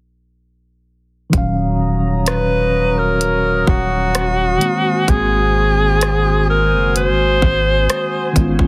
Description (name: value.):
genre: contemporary R&B.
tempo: 64 BPM.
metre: 4/4.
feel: straight.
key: Eb minor.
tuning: A4 = 440 Hz.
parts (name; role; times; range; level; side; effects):
mellow tine electric piano; accompaniment; 1.3-8.7 s; Bb2 to F5; -22 LUFS; equal; none.
chorused pulse-width pad; sustained chords; 1.3-8.7 s; Cb4 to Eb6; -26 LUFS; equal; none.
long sustained 808-style bass; bass; 1.3-8.7 s; Eb1 to Ab1; -22 LUFS; equal; none.
trap drum kit; drums; 1.3-8.7 s; hi-hat, kick drum, rim click; -20 LUFS; equal; none.
bright alto saxophone; melody; 2.3-8.3 s; Gb4 to C5; -19 LUFS; equal; tape echo.
room: little or no reverb.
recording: heavily compressed radio sound, faint mains hum.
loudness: -16 LUFS.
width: mono.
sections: 1.3-8.7 A section.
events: none.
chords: 1.3 Ebm7; 4.6 Ab7.